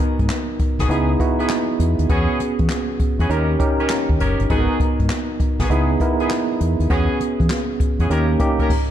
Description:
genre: R&B, new jack swing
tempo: 100 BPM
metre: 4/4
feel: swing 65% on 16ths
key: G# minor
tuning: A4 = 440 Hz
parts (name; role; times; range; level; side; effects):
- tine electric piano; accompaniment; 0.0-8.7 s; A#3 to A#4; -21 LUFS; right 2 dB; medium stereo tremolo
- deep dub fingered electric bass; bass; 0.0-8.4 s; F#1 to E3; -20 LUFS; equal; none
- jazz brush drum kit; drums; 0.2-8.9 s; crash cymbal, handclaps, hi-hat, kick drum, snare drum; -21 LUFS; equal; none
- warm horn section; stabs; 0.8-8.7 s; B3 to A#4; -28 LUFS; left 1 dB; ping-pong delay
room: light reverb, studio reverb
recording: dark, warm production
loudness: -17 LUFS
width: side -10 dB against mid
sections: 0.0-8.9 A section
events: none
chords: 0.0 G#m7; 0.9 C#m7; 2.1 E69; 3.3 D#7; 4.5 G#m7; 5.7 C#m7; 6.9 E69; 8.1 D#7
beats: 0.30 0.90 1.50 | 2.10 2.70 3.30 3.90 | 4.50 5.10 5.70 6.30 | 6.90 7.50 8.10 8.70

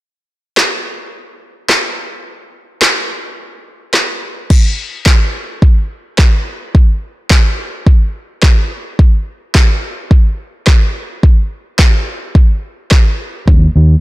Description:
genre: dance-pop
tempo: 107 BPM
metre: 4/4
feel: straight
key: unclear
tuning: A4 = 440 Hz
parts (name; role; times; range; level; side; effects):
- deep house drum kit; drums; 0.6-13.6 s; crash cymbal, handclaps, kick drum, snare drum; -10 LUFS; equal; none
- vintage muted fingered electric bass; bass; 13.5-13.9 s; Eb2; -8 LUFS; equal; sidechain pumping
room: little or no reverb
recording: blown-out, overdriven recording, overdrive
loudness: -10 LUFS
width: side -18 dB against mid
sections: 0.0-4.5 A section; 4.5-14.0 B section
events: break 3.4-4.5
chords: none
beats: | 0.02 0.58 1.14 1.70 | 2.26 2.82 3.38 3.94 | 4.50 5.06 5.62 6.18 | 6.75 7.31 7.87 8.43 | 8.99 9.55 10.11 10.67 | 11.23 11.79 12.35 12.91 | 13.47

